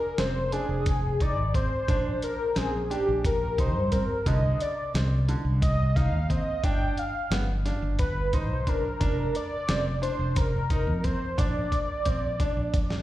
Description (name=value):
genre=progressive instrumental, band music in an uneven meter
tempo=177 BPM (eighths)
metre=7/8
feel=straight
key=unclear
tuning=A4 = 440 Hz
part: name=octave-doubled lead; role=melody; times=0.0-13.0 s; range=G4 to G5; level=-29 LUFS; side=equal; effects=chorus, phaser, slapback echo, tape echo
part: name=clear baby grand piano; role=arpeggios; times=0.2-12.7 s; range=D3 to Eb4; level=-34 LUFS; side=right 2 dB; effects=slapback echo
part: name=mellow fretless electric bass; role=bass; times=0.2-13.0 s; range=F1 to G2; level=-27 LUFS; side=equal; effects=none
part: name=dusty soul sampler-style drum kit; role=drums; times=0.2-13.0 s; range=hi-hat, kick drum, snare drum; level=-27 LUFS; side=equal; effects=none
room=little or no reverb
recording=live gig heard through the venue's PA, recital hall reverb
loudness=-24 LUFS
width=side -15 dB against mid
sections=0.0-13.0 A section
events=drum fill 11.7-13.0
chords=0.0 Fm; 1.9 Bb; 4.3 Cm; 6.6 G; 9.0 F5; 11.4 Bb